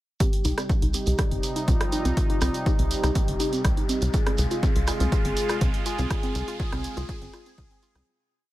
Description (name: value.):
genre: melodic techno.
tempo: 122 BPM.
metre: 4/4.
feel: straight.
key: C minor.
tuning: A4 = 440 Hz.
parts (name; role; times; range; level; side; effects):
wide unison lead; melody; 0.2-8.1 s; F4 to Ab4; -32 LUFS; equal; sidechain pumping, dub echo.
sweeping resonant pad; sustained chords; 0.2-8.0 s; C3 to F4; -33 LUFS; equal; chorus, sidechain pumping.
woody wave-folded pluck; arpeggios; 0.2-8.1 s; C4 to F4; -33 LUFS; equal; chorus, sidechain pumping, dub echo.
electronic kick drum; drums; 0.2-7.7 s; none; -25 LUFS; equal; none.
punchy analog drum machine; drums; 0.2-8.0 s; congas, hi-hat, rim click; -33 LUFS; right 1 dB; high-pass filter on hats, high-pass filter on snare, high-pass filter on perc, high-pass filter on room.
shekere; percussion; 0.2-8.0 s; none; -37 LUFS; right 5 dB; none.
riser; sound effects; 2.8-8.1 s; none; -41 LUFS; right 1 dB; none.
tight sequencer bass; bass; 0.4-8.0 s; G1 to C2; -25 LUFS; equal; sidechain pumping.
room: little or no reverb.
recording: none.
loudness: -22 LUFS.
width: side -16 dB against mid.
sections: 0.2-8.1 build.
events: build-up 0.2-8.1; filter sweep on synth pluck 0.2-8.1; filter sweep on analog synth lead 0.2-8.1; riser 2.8-8.1; fade-out 5.5-8.1.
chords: 0.2 Cm; 4.1 Fm.